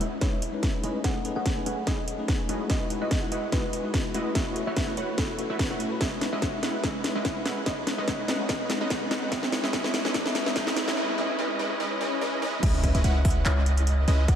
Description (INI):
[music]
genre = future bass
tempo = 145 BPM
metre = 4/4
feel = swing 54% on 16ths, half-time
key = unclear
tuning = A4 = 440 Hz
[part]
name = thumb-piano-like synth pluck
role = melody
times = 0.0-14.4 s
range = A4 to F#5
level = -36 LUFS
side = left 2 dB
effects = chorus, sidechain pumping, diffuse ambient delay
[part]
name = supersaw stab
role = riff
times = 0.0-14.4 s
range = G#3 to G#5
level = -31 LUFS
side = right 1 dB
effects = sidechain pumping, low-pass filter, diffuse ambient delay
[part]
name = warm 808-style bass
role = bass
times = 0.0-14.4 s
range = E1 to A2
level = -28 LUFS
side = equal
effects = sidechain pumping, high-pass filter
[part]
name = trap drum kit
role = drums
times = 0.0-14.4 s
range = crash cymbal, handclaps, hi-hat, snare drum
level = -30 LUFS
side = equal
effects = overdrive
[part]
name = bell-like tine electric piano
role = accompaniment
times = 0.2-10.9 s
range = G#3 to E5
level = -36 LUFS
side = left 2 dB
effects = sidechain pumping, diffuse ambient delay
[part]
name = electronic kick drum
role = drums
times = 0.2-14.4 s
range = none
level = -28 LUFS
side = equal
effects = overdrive
[part]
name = riser, swell and impact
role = sound effects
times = 8.7-14.3 s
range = none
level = -37 LUFS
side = equal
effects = none
[part]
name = airy dreamy lead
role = arpeggios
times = 12.6-14.4 s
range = D#5 to F#5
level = -38 LUFS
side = right 2 dB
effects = chorus, sidechain pumping, diffuse ambient delay
[sound]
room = wet cathedral reverb, RT60 6.1 s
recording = dreamy mix soaked in reverb, high-pass filter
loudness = -24 LUFS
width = side -9 dB against mid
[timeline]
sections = 0.0-12.6 A section; 12.6-14.4 B section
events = build-up 0.0-12.6; drum fill 0.0-11.0; filter sweep on supersaw synth 0.0-12.6; filter sweep 0.0-12.6; swell 11.9-12.6; drop 12.6-14.4; impact 12.6-14.3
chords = 0.0 C#m9; 1.0 B13; 2.7 Emaj9; 4.4 A69; 6.0 C#m9; 7.7 B69; 9.3 Emaj7; 11.0 C#m9/G#; 12.6 C#m9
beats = 0.21 0.63 | 1.04 1.46 1.87 2.28 | 2.70 3.11 3.52 3.94 | 4.35 4.77 5.18 5.59 | 6.01 6.42 6.83 7.25 | 7.66 8.08 8.49 8.90 | 9.32 9.73 10.15 10.56 | 10.97 11.39 11.80 12.21 | 12.63 13.04 13.46 13.87 | 14.28